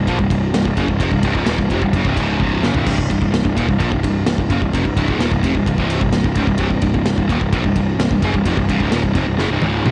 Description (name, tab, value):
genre	heavy metal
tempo	129 BPM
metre	4/4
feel	straight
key	C minor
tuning	A4 = 444 Hz
part	distorted electric guitar	riff	0.0-9.9 s	C2 to F3	-22 LUFS	equal	overdrive, cassette tape
part	fuzz picked electric bass	bass	0.0-9.9 s	C1 to Bb1	-22 LUFS	equal	overdrive
part	big rock drum kit	drums	0.1-9.9 s	crash cymbal, kick drum, ride cymbal, snare drum, toms	-23 LUFS	equal	cassette tape
room	small room reverb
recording	home recording on cassette, nothing above 10.7 kHz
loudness	-17 LUFS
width	mono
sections	0.0-9.9 A section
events	drum fill 2.4-2.9, 9.4-9.9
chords	0.0 C5